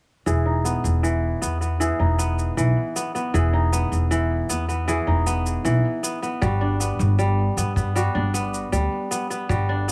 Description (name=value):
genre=folktronica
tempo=78 BPM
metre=4/4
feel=straight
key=E major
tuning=A4 = 440 Hz
part: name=kora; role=arpeggios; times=0.3-9.9 s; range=E3 to G#4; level=-26 LUFS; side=equal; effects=vintage 12-bit sampler grit, low-pass filter, digital delay
part: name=upright bass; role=bass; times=0.3-9.9 s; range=E1 to G2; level=-24 LUFS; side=equal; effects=none
part: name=shaker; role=drums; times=0.3-9.9 s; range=none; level=-34 LUFS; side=equal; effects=overdrive
part: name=kick drum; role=drums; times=6.4-9.6 s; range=none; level=-27 LUFS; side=equal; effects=none
room=light reverb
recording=none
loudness=-23 LUFS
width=mono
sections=0.3-9.9 A section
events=filter sweep on upright bass 0.3-9.9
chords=0.3 Emaj7; 6.4 Gmaj7